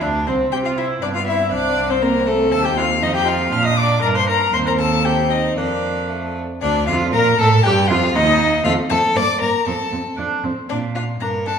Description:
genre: quick classical-period movement for string quartet.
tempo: 119 BPM.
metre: 2/4.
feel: straight.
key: Bb major.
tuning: A4 = 440 Hz.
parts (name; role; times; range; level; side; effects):
rich violin; melody; 0.0-11.6 s; A4 to F6; -21 LUFS; left 8 dB; none.
warm violin; second line; 0.0-11.6 s; A3 to D5; -22 LUFS; left 1 dB; none.
rich viola; accompaniment; 0.0-11.5 s; A3 to F5; -22 LUFS; right 3 dB; none.
rich cello; bass; 0.0-11.6 s; C2 to C3; -21 LUFS; right 3 dB; none.
room: wet recital hall reverb, RT60 1.4 s.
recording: recorded in a church or concert hall.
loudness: -16 LUFS.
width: side -7 dB against mid.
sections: 0.0-6.6 A section; 6.6-11.6 B section.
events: none.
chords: 0.0 N.C.; 0.5 C; 1.0 G; 1.5 Bbmaj9/C; 2.5 Cm/Eb; 3.0 Ebadd9/F; 3.5 Bb; 4.0 Gm; 4.5 Cm/Eb; 5.6 Bb/F; 6.6 Dm; 7.1 N.C.; 7.6 Ebadd9; 8.6 F; 9.2 Gm; 9.7 F; 10.7 Bb.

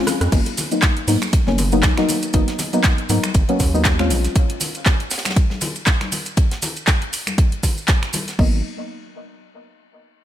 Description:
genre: deep house.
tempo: 119 BPM.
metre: 4/4.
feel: swing 56% on 16ths.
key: G# dorian.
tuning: A4 = 441 Hz.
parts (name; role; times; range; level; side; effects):
deep mellow chord stab; stabs; 0.0-4.3, 8.4-8.6 s; F#3 to E#4; -21 LUFS; left 1 dB; chorus, dub echo.
deep house drum kit; drums; 0.1-8.5 s; crash cymbal, finger snaps, handclaps, hi-hat, rim click; -23 LUFS; equal; overdrive.
tight funk drum kit; drums; 0.1-8.4 s; hi-hat, ride cymbal, snare drum; -32 LUFS; left 1 dB; high-pass filter on cymbals, high-pass filter on hats, high-pass filter on snare, high-pass filter on room.
congas; percussion; 0.1-8.2 s; none; -31 LUFS; left 3 dB; sidechain pumping on perc.
maracas; percussion; 0.1-8.4 s; none; -29 LUFS; right 4 dB; none.
round analog bass; bass; 0.2-4.3, 8.4-8.6 s; F#1 to G#2; -20 LUFS; equal; sidechain pumping.
electronic kick drum; drums; 0.3-8.5 s; none; -17 LUFS; equal; overdrive.
room: small room ambience.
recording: none.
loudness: -16 LUFS.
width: side -11 dB against mid.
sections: 0.3-8.4 A section; 8.4-10.2 B section.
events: drum fill 0.0-0.3; band accent 0.2.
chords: 0.3 G#m7; 4.1 A#m7; 8.4 G#m7.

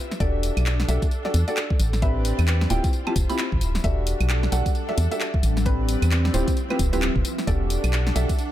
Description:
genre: UK garage, two-step garage.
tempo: 132 BPM.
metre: 4/4.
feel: swing 60% on 16ths.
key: E minor.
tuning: A4 = 440 Hz.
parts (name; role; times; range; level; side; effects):
mallet-like synth pluck; melody; 0.0-8.3 s; B4 to B5; -34 LUFS; equal; chorus, ping-pong delay.
rich symphonic string section; texture; 0.0-8.5 s; F3 to E5; -36 LUFS; right 1 dB; sidechain pumping.
garage drum kit; drums; 0.1-8.5 s; claves, handclaps, hi-hat, snare drum, tambourine; -30 LUFS; equal; none.
dark grand piano; stabs; 0.2-8.3 s; C4 to B4; -29 LUFS; equal; lush chorus, ping-pong delay.
organ-like FM bass; bass; 0.2-8.3 s; D1 to E2; -22 LUFS; equal; none.
electronic kick drum; drums; 0.2-8.4 s; none; -24 LUFS; equal; overdrive.
airy breathy pad; sustained chords; 4.2-8.5 s; G3 to C4; -32 LUFS; equal; chorus, phaser, sidechain pumping.
room: little or no reverb.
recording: none.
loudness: -20 LUFS.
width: side -13 dB against mid.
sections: 0.0-8.5 A section.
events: none.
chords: 0.2 Em11; 1.8 Am11; 2.7 Dm11; 3.8 Em11; 5.4 Am11; 6.3 Dm11; 7.5 Em11.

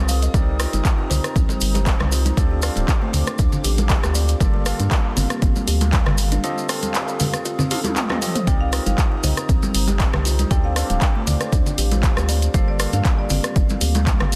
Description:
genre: afro house.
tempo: 118 BPM.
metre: 4/4.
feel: swing 53% on 16ths.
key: C dorian.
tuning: A4 = 445 Hz.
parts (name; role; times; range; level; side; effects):
dark analog pad; sustained chords; 0.0-14.4 s; G4 to Eb6; -36 LUFS; equal; chorus, sidechain pumping.
overdriven tine electric piano; stabs; 0.0-14.4 s; Bb3 to F5; -33 LUFS; equal; sidechain pumping, digital delay.
round analog bass; bass; 0.0-14.4 s; D1 to G2; -23 LUFS; equal; sidechain pumping.
buzzing kalimba; arpeggios; 0.1-14.3 s; D3 to F5; -32 LUFS; equal; sidechain pumping, digital delay.
deep house drum kit; drums; 0.1-14.4 s; handclaps, hi-hat, rim click, toms; -27 LUFS; equal; none.
maracas; percussion; 0.1-14.4 s; none; -34 LUFS; equal; none.
electronic kick drum; drums; 0.3-14.2 s; none; -21 LUFS; equal; none.
congas; percussion; 0.7-14.3 s; none; -29 LUFS; equal; none.
marimba with medium hard mallets; melody; 8.5-14.3 s; C5 to G5; -34 LUFS; equal; digital delay.
room: small room ambience.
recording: dense, heavily limited modern master.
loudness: -20 LUFS.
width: mono.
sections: 0.0-14.4 A section.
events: drum fill 7.7-8.5.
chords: 0.3 Cm7; 2.4 Dm7; 4.4 Gm7; 6.4 F7; 8.5 Cm7; 10.5 Dm7; 12.5 Gm7.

